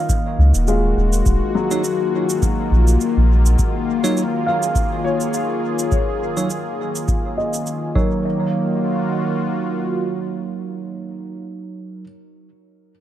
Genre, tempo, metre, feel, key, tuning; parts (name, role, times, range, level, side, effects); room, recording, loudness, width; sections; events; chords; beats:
ambient dub; 103 BPM; 4/4; swing 56% on 16ths; Eb minor; A4 = 440 Hz
warm analog pad; sustained chords; 0.0-11.3 s; Eb3 to Ab4; -23 LUFS; left 2 dB; chorus, phaser
felt-muted upright piano; arpeggios; 0.0-13.0 s; Gb3 to F5; -25 LUFS; left 2 dB; low-pass filter, analog delay
cabasa; drums; 0.1-7.8 s; -30 LUFS; right 4 dB
electronic kick drum; drums; 0.1-8.1 s; -20 LUFS; equal
soft dub sub bass; bass; 0.4-3.6 s; Eb1 to Db2; -14 LUFS; equal
bell-like tine electric piano; stabs; 1.7-12.0 s; Gb3 to Db5; -25 LUFS; right 4 dB; phaser, low-pass filter, dub echo
light reverb; echo-heavy mix; -17 LUFS; side -12 dB against mid
0.0-8.2 A section; 8.2-10.6 B section
filter sweep on tine electric piano 0.0-8.2
0.0 Ebm7
0.09 0.67 | 1.26 1.84 2.42 3.00 | 3.59 4.17 4.75 5.33 | 5.92 6.50 7.08 7.66 | 8.25 8.83 9.41 9.99